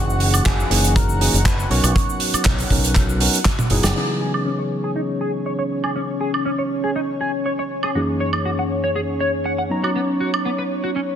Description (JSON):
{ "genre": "nu-disco, nu disco", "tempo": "120 BPM", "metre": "4/4", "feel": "straight", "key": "C# dorian", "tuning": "A4 = 440 Hz", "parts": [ { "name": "electric guitar with an envelope filter", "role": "melody", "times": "0.0-3.4 s", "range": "F#4 to C#5", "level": "-28 LUFS", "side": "left 1 dB", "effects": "phaser, digital delay" }, { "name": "tine electric piano", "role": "accompaniment", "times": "0.0-11.2 s", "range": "F#2 to A#5", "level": "-24 LUFS", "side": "equal", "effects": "overdrive, vintage 12-bit sampler grit, sidechain pumping, digital delay" }, { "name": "lush unison pad", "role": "sustained chords", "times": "0.0-11.2 s", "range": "C#4 to F#5", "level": "-26 LUFS", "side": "left 1 dB", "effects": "chorus, sidechain pumping" }, { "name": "fingered electric bass with an envelope filter", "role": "bass", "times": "0.0-3.9 s", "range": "F#1 to B1", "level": "-20 LUFS", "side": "equal", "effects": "sidechain pumping" }, { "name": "loose indie drum kit", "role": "drums", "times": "0.1-10.4 s", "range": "cabasa, handclaps, hi-hat, snare drum, toms, woodblock", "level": "-22 LUFS", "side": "right 3 dB", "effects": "low-pass filter on hats, low-pass filter on toms, low-pass filter on snare, low-pass filter on perc, low-pass filter on room" }, { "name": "kick drum", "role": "drums", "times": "0.5-3.6 s", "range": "none", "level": "-20 LUFS", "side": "equal", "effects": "none" }, { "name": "clean electric guitar", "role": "riff", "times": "4.0-11.0 s", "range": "B3 to F#5", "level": "-26 LUFS", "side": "equal", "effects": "analog chorus, vintage 12-bit sampler grit, low-pass filter, digital delay" } ], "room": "light reverb, studio reverb", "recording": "dense, heavily limited modern master", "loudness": "-18 LUFS", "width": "side -9 dB against mid", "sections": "0.0-4.0 A section; 4.0-11.2 B section", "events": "drum fill 3.5-4.0; band accent 3.8; filter sweep on drum 4.0-11.2; filter sweep on clean electric guitar 4.0-11.2", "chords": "0.0 F#13; 1.7 Bmaj9; 4.0 C#m11; 8.0 F#13; 9.7 Bmaj9" }